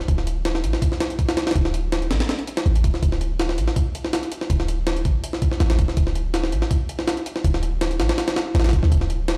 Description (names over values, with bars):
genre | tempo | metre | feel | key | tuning
drum and bass, jungle | 163 BPM | 4/4 | straight | unclear | A4 = 440 Hz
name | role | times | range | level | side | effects
jungle sampler-style drum kit | drums | 0.0-9.4 s | hi-hat, kick drum, snare drum | -24 LUFS | equal | studio reverb
warm 808-style bass | bass | 0.1-9.4 s | D1 to D2 | -24 LUFS | equal | none
room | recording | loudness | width
light reverb | played on a big sound system in a bare room, stone room reverb | -22 LUFS | mono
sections
0.0-9.4 A section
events
none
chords
none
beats
| 0.08 0.45 0.82 1.19 | 1.55 1.92 2.29 2.66 | 3.03 3.40 3.76 4.13 | 4.50 4.87 5.24 5.61 | 5.97 6.34 6.71 7.08 | 7.45 7.81 8.18 8.55 | 8.92 9.29